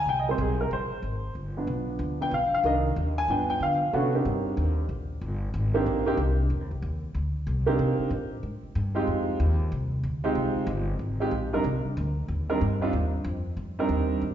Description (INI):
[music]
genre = jazz, big band swing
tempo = 187 BPM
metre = 4/4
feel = swing 64% on 8ths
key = C minor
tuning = A4 = 440 Hz
[part]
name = warm baby grand piano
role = accompaniment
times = 0.0-14.2 s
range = Eb3 to Ab5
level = -26 LUFS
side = right 1 dB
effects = none
[part]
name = upright bass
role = bass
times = 0.0-14.3 s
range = G1 to D3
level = -28 LUFS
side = left 1 dB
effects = none
[sound]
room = wet recital hall reverb, RT60 1.7 s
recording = recorded in a church or concert hall, nothing above 7.7 kHz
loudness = -25 LUFS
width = side -10 dB against mid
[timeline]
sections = 0.0-3.9 A section; 3.9-14.3 B section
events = grand piano solo 0.0-3.9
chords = 0.0 Abmaj7; 1.4 G7; 2.6 Cm7; 3.3 G7; 3.9 Cm7; 6.5 N.C.; 7.8 Cm7